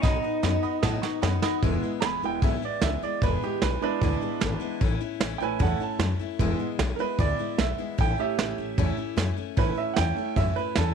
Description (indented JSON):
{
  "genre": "rockabilly",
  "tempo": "151 BPM",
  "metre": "4/4",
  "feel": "straight",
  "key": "E major",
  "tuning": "A4 = 440 Hz",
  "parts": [
    { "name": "electric guitar through a small old amp", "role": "melody", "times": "0.0-1.2 s", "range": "D#4", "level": "-30 LUFS", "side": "right 4 dB", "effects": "tape echo" },
    { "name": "bright upright piano", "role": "accompaniment", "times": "0.0-10.9 s", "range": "G#3 to C#6", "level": "-29 LUFS", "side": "right 11 dB", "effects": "none" },
    { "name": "picked steel-string acoustic guitar", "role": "accompaniment", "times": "0.0-10.9 s", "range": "E2 to F#4", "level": "-32 LUFS", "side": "left 16 dB", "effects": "none" },
    { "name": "upright bass", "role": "bass", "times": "0.0-10.9 s", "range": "E1 to A2", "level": "-28 LUFS", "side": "left 2 dB", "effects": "none" },
    { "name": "soft brush drum kit", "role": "drums", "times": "0.0-10.9 s", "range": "hi-hat, kick drum, snare drum", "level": "-28 LUFS", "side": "right 2 dB", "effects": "none" }
  ],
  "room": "light reverb, studio ambience",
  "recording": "1960s-style stereo with parts hard left and right",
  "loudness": "-24 LUFS",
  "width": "side -6 dB against mid",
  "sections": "0.0-1.6 A section; 1.6-10.9 B section",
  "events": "drum fill 0.0-1.6; upright piano solo 1.6-10.9",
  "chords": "0.0 B; 1.6 E; 4.8 A; 6.4 E; 8.0 A",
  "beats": "| 0.04 0.43 0.83 1.23 | 1.63 2.03 2.43 2.82 | 3.22 3.62 4.02 4.42 | 4.81 5.21 5.61 6.00 | 6.40 6.80 7.19 7.59 | 7.99 8.38 8.78 9.18 | 9.57 9.97 10.37 10.76"
}